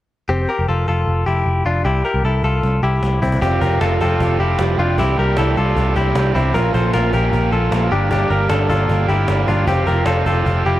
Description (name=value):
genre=jangly indie pop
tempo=154 BPM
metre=4/4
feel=straight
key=F major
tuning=A4 = 440 Hz
part: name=direct-recorded clean electric guitar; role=arpeggios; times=0.3-10.8 s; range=C4 to C5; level=-19 LUFS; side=left 3 dB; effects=spring reverb
part: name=vintage muted picked electric bass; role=bass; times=0.3-10.8 s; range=F1 to C2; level=-18 LUFS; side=equal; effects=none
part: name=cajon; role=drums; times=2.6-10.7 s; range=none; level=-26 LUFS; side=equal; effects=none
part: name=raw garage guitar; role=accompaniment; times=3.4-10.8 s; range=G2 to Bb4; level=-22 LUFS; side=right 5 dB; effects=overdrive
room=light reverb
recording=dark, warm production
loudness=-15 LUFS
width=side -14 dB against mid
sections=0.3-3.4 A section; 3.4-10.8 B section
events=drum fill 2.6-3.4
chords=0.3 Fsus2; 1.9 C; 3.4 Fsus2; 5.0 Cadd9; 6.5 Bbm; 7.9 Gm; 9.7 Fsus2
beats=| 0.29 0.69 1.08 1.47 | 1.86 2.25 2.64 3.03 | 3.42 3.81 4.21 4.60 | 4.99 5.38 5.77 6.16 | 6.55 6.94 7.33 7.72 | 8.11 8.50 8.89 9.29 | 9.68 10.07 10.46